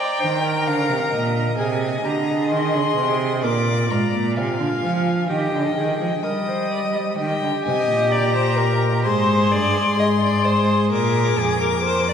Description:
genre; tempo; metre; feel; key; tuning
classical, baroque-style fugue for string quartet; 64 BPM; 4/4; straight; Eb major from 7.2 s; A4 = 440 Hz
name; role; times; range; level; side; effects
rich violin; melody; 0.0-12.1 s; G5 to Eb6; -26 LUFS; left 6 dB; none
rich violin; second line; 0.0-12.1 s; Ab4 to G5; -24 LUFS; left 2 dB; none
rich viola; accompaniment; 0.0-12.1 s; F4 to Eb5; -25 LUFS; right 2 dB; none
warm cello; bass; 0.2-12.1 s; F2 to G3; -22 LUFS; right 2 dB; none
room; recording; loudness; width
wet church reverb, RT60 3.0 s; recorded in a church or concert hall; -18 LUFS; side -8 dB against mid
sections
0.0-7.2 A section; 7.2-12.1 B section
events
none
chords
0.0 Eb; 1.6 Ab/C; 3.4 Bb7; 5.3 Eb; 9.1 Ab; 10.9 Bb7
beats
0.67 1.58 2.51 | 3.44 4.37 5.30 6.24 | 7.18 8.12 9.05 9.99 | 10.93 11.86

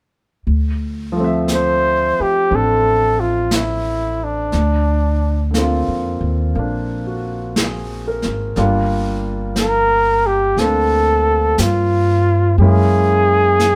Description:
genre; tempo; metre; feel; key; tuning
jazz ballad; 59 BPM; 4/4; swing 69% on 8ths; D minor; A4 = 439 Hz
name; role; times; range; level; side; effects
upright bass; bass; 0.5-13.8 s; G1 to G2; -21 LUFS; equal; none
jazz brush drum kit; drums; 0.5-13.8 s; brushed snare drum, hi-hat, snare drum; -26 LUFS; equal; none
warm concert grand piano; accompaniment; 1.1-13.8 s; D3 to E5; -24 LUFS; equal; none
mellow flugelhorn; melody; 1.5-13.8 s; D4 to C5; -18 LUFS; equal; none
room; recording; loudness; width
light reverb; band playing live in one room; -17 LUFS; mono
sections
0.5-13.8 A section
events
none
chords
0.5 Dm9; 4.5 Bb9; 8.6 Gm9; 12.6 F#9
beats
| 0.47 1.49 2.50 3.52 | 4.53 5.54 6.55 7.56 | 8.56 9.56 10.57 11.58 | 12.58 13.60

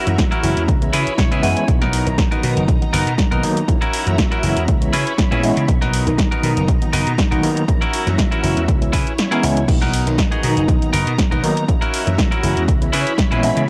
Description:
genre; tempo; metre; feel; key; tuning
filtered disco house; 120 BPM; 4/4; swing 54% on 16ths; B major; A4 = 440 Hz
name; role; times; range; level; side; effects
string machine, full ensemble; sustained chords; 0.0-13.7 s; D#4 to B5; -29 LUFS; equal; ensemble chorus, sidechain pumping, cassette tape
clean electric guitar; riff; 0.0-13.6 s; B3 to G#5; -25 LUFS; equal; vintage 12-bit sampler grit, sidechain pumping, cassette tape
overdriven reed electric piano; accompaniment; 0.1-13.6 s; D#3 to A#4; -24 LUFS; equal; fast tremolo, phaser, vintage 12-bit sampler grit, sidechain pumping, cassette tape
vintage slap bass; bass; 0.1-13.7 s; F#1 to C#3; -23 LUFS; equal; sidechain pumping
punchy analog drum machine; drums; 0.1-13.7 s; crash cymbal, hi-hat, snare drum; -27 LUFS; equal; sidechain pumping on hats, cassette tape, sidechain pumping on cymbals
electronic kick drum; drums; 0.2-13.3 s; none; -20 LUFS; equal; cassette tape
room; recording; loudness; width
light reverb, digital ambience; home recording on cassette; -17 LUFS; mono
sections
0.0-13.7 A section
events
clean electric guitar fill 0.9-1.7; kick drops out 9.2-9.7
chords
0.0 F#7; 0.7 C#m7; 1.7 Bmaj7; 3.7 F#7; 4.7 C#m7; 5.7 Bmaj7; 7.7 F#7; 8.7 C#m7; 9.7 Bmaj7; 11.7 F#7; 12.7 C#m7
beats
0.18 0.68 1.18 | 1.68 2.18 2.68 3.18 | 3.68 4.18 4.68 5.18 | 5.68 6.18 6.68 7.18 | 7.68 8.18 8.68 9.18 | 9.68 10.18 10.68 11.18 | 11.68 12.18 12.68 13.18

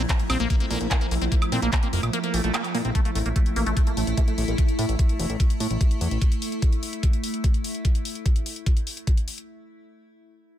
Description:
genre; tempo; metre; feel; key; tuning
psychedelic trance; 147 BPM; 4/4; straight; unclear; A4 = 440 Hz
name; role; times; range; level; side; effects
evolving wavetable pad; sustained chords; 0.0-7.9 s; A3 to E4; -32 LUFS; left 1 dB; phaser, built-in reverb, sidechain pumping
liquid acid bass; riff; 0.0-4.5 s; A3 to C4; -30 LUFS; moving between left 3 dB and right 3 dB; phaser, auto-pan, sidechain pumping, dub echo
fat analog bass; bass; 0.0-6.2 s; E1 to Bb2; -25 LUFS; equal; none
ethereal airy pad; texture; 0.0-4.6 s; F3 to Bb5; -34 LUFS; right 4 dB; ensemble chorus, built-in reverb, sidechain pumping
drum and bass drum kit; drums; 0.1-9.5 s; handclaps, hi-hat, woodblock; -32 LUFS; left 1 dB; none
electronic kick drum; drums; 0.1-9.2 s; none; -21 LUFS; equal; none
room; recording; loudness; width
little or no reverb; none; -21 LUFS; side -12 dB against mid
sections
0.0-3.0 A section; 3.0-9.5 B section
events
drop 0.0-3.0; break 2.1-3.0; band accent 2.5; filter sweep on acid bass 3.0-4.6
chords
0.0 Bb5; 3.0 A5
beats
0.09 0.50 0.91 | 1.32 1.73 2.13 2.54 | 2.95 3.36 3.77 4.17 | 4.58 4.99 5.40 5.81 | 6.21 6.62 7.03 7.44 | 7.85 8.26 8.66 9.07

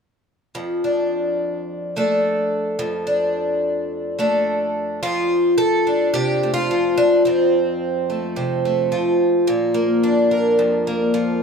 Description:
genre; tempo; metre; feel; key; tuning
folk, solo fingerstyle acoustic guitar; 108 BPM; 4/4; straight; F major; A4 = 440 Hz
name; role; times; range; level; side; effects
picked twelve-string acoustic guitar; solo; 0.5-11.4 s; F2 to Bb4; -17 LUFS; equal; none
room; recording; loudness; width
light reverb; close, detailed microphones; -17 LUFS; side -6 dB against mid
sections
0.6-5.0 A section; 5.0-11.4 B section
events
none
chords
0.6 F6; 9.5 Bb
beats
| 0.55 1.11 1.67 2.22 | 2.78 3.34 3.90 4.46 | 5.02 5.58 6.14 6.70 | 7.26 7.81 8.37 8.92 | 9.47 10.02 10.57 11.13

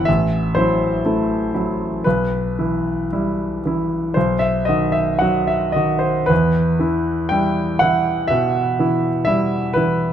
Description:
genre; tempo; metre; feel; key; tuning
classical, romantic nocturne for solo piano; 55-64 BPM; 4/4; rubato; E minor; A4 = 440 Hz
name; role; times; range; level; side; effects
warm concert grand piano; solo; 0.0-10.1 s; G1 to G5; -16 LUFS; equal; none
room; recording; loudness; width
light reverb; close, detailed microphones; -16 LUFS; side -9 dB against mid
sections
0.0-10.1 A section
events
none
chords
0.1 F#m7b5/A; 2.0 Em/B; 4.2 B; 6.3 Em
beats
0.07 1.04 | 2.05 3.10 4.16 5.24 | 6.31 7.32 8.30 9.28

